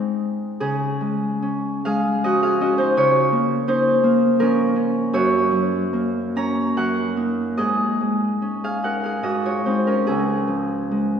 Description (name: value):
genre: classical, solo harp piece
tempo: 64-83 BPM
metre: 3/4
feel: rubato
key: Db major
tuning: A4 = 443 Hz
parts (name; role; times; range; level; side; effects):
- Celtic harp; solo; 0.0-11.2 s; Db2 to Bb5; -18 LUFS; equal; none
room: wet concert hall reverb, RT60 2.0 s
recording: heard from further back in the room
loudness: -18 LUFS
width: side -7 dB against mid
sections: 0.6-11.2 A section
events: none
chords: 0.0 Ab; 0.6 Db; 2.9 Bbm/Db; 5.1 Gb; 6.8 Ebm/Gb; 7.6 Absus4; 9.2 Ab; 10.1 Db